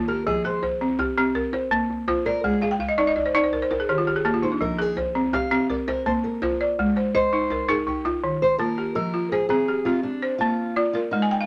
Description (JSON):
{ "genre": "west african traditional, West African string and xylophone music", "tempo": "110 BPM (dotted quarters)", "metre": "12/8", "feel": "straight", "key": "F dorian", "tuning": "A4 = 438 Hz", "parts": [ { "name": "balafon", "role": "arpeggios", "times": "0.0-11.5 s", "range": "Eb3 to Ab5", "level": "-24 LUFS", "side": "equal", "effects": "none" }, { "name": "fingerpicked steel-string acoustic guitar", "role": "melody", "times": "0.1-11.5 s", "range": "D4 to F5", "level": "-28 LUFS", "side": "equal", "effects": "none" }, { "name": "djembe", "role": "percussion", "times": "0.2-8.9 s", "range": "none", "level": "-38 LUFS", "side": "equal", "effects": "none" } ], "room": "light reverb", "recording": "none", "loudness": "-23 LUFS", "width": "mono", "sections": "0.0-9.0 A section; 9.0-11.5 B section", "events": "steel-string acoustic guitar solo 0.0-9.0; balafon fill 2.6-4.6, 11.2; drum fill 8.2-9.0", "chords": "0.3 Fm; 1.4 Bb; 2.4 Ab; 3.5 Eb5; 4.6 Fm; 5.7 Bb; 6.8 Ab; 7.9 Eb; 9.0 Fm; 10.0 Bb", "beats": "| 0.27 0.81 1.35 1.90 | 2.44 2.98 3.52 4.07 | 4.61 5.15 5.70 6.24 | 6.78 7.33 7.87 8.41 | 8.96 9.50 10.04 10.59 | 11.13" }